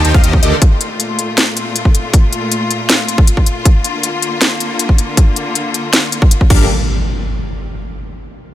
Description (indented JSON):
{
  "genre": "future bass",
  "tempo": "158 BPM",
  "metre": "4/4",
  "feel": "half-time",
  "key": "G minor",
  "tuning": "A4 = 440 Hz",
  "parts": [
    { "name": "wide unison pluck", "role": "melody", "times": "0.0-0.5 s", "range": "Eb5 to F5", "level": "-25 LUFS", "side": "equal", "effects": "analog chorus, sidechain pumping, digital delay" },
    { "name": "bright studio string section", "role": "sustained chords", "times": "0.0-6.7 s", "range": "Bb2 to G4", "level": "-20 LUFS", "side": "left 2 dB", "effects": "sidechain pumping" },
    { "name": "big bright polysynth", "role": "riff", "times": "0.0-0.5, 6.5-6.6 s", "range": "D3 to G5", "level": "-21 LUFS", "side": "equal", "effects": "chorus, phaser, sidechain pumping, digital delay" },
    { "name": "wide detuned saw bass", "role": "bass", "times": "0.0-0.5, 6.5-6.7 s", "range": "G1 to Eb2", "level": "-15 LUFS", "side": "equal", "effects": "chorus, sidechain pumping" },
    { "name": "trap drum kit", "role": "drums", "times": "0.0-6.6 s", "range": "crash cymbal, hi-hat, snare drum", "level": "-16 LUFS", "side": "left 1 dB", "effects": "none" },
    { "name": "electronic kick drum", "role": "drums", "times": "0.1-6.6 s", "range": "none", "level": "-9 LUFS", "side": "equal", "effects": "none" },
    { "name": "impact", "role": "sound effects", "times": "6.5-8.0 s", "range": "none", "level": "-19 LUFS", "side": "equal", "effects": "none" }
  ],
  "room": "little or no reverb",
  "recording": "none",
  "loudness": "-11 LUFS",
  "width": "side -13 dB against mid",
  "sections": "0.0-6.7 A section; 6.7-8.2 B section",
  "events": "none",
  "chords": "0.4 Gm9/D (rootless); 3.7 Bb/D; 6.5 Gm7; 6.7 N.C.",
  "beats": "0.24 | 0.62 1.00 1.38 1.75 | 2.13 2.52 2.89 3.27 | 3.65 4.03 4.41 4.79 | 5.17 5.55 5.93 6.31 | 6.69 7.07 7.45 7.83"
}